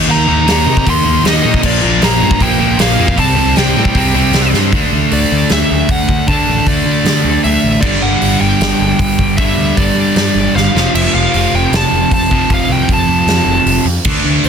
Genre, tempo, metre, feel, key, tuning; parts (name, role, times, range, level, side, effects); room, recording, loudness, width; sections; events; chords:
punk rock; 154 BPM; 4/4; straight; A4 = 440 Hz
distorted electric guitar; riff; 0.0-14.5 s; F2 to Eb4; -14 LUFS; right 1 dB; distortion
fuzz picked electric bass; bass; 0.0-14.5 s; F1 to D3; -17 LUFS; equal; overdrive
bluesy overdriven lead guitar; melody; 0.1-14.5 s; D5 to C6; -17 LUFS; equal; distortion
big rock drum kit; drums; 0.5-14.5 s; crash cymbal, hi-hat, kick drum, snare drum; -16 LUFS; equal
little or no reverb; dense, heavily limited modern master; -10 LUFS; side -7 dB against mid
0.0-4.7 A section; 4.7-14.5 B section
drum fill 4.5, 10.6-10.9; half time 4.7-14.5
0.0 Eb5; 1.6 Bb; 3.2 C5; 4.7 D5; 7.8 G5; 10.7 F